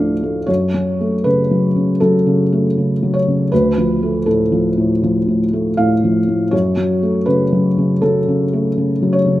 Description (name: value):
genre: neoclassical minimalist piano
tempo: 80 BPM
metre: 4/4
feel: rubato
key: F# harmonic minor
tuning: A4 = 440 Hz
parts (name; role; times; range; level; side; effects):
- felt-muted upright piano; solo; 0.0-9.4 s; D2 to F5; -14 LUFS; equal; none
room: light reverb, small room reverb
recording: rough home demo mix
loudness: -14 LUFS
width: side -15 dB against mid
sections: 0.5-9.4 A section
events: none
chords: 0.5 F#m; 3.5 Dm; 6.5 F#m